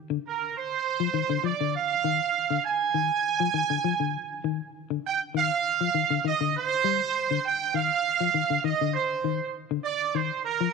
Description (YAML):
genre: afrobeat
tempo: 100 BPM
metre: 4/4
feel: swing 54% on 16ths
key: unclear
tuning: A4 = 440 Hz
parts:
  - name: semi-hollow electric guitar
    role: arpeggios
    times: 0.1-10.7 s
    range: D3 to G3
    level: -30 LUFS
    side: left 14 dB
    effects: none
  - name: bright horn section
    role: melody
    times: 0.3-10.7 s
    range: Bb4 to Ab5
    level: -25 LUFS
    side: right 8 dB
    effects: none
room: light reverb, small room ambience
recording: 1960s-style stereo with parts hard left and right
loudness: -24 LUFS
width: side -4 dB against mid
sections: 0.0-10.7 A section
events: none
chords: 0.0 Ddim; 5.0 Ebmaj7sus2/D; 9.8 Dm7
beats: | 0.24 0.84 1.44 2.04 | 2.65 3.25 3.85 4.45 | 5.05 5.65 6.25 6.85 | 7.45 8.04 8.64 9.24 | 9.84 10.44